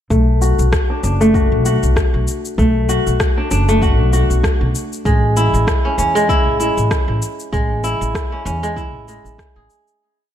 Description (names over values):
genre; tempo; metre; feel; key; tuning
organic downtempo; 97 BPM; 4/4; swing 56% on 16ths; B dorian; A4 = 440 Hz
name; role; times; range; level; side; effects
kora; arpeggios; 0.1-10.3 s; G#3 to G#4; -18 LUFS; equal; vintage 12-bit sampler grit, low-pass filter, digital delay
upright bass; bass; 0.1-9.7 s; F#1 to E2; -18 LUFS; equal; sidechain pumping
electronic kick drum; drums; 0.1-9.5 s; none; -18 LUFS; equal; none
electronic shaker and rim click; drums; 0.1-10.0 s; none; -24 LUFS; left 2 dB; none
room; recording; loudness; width
light reverb; dark, warm production; -14 LUFS; side -10 dB against mid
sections
0.1-10.0 groove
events
filter sweep on kora 0.1-10.0; fade-out 6.7-10.0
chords
0.1 Bm7; 5.1 Amaj7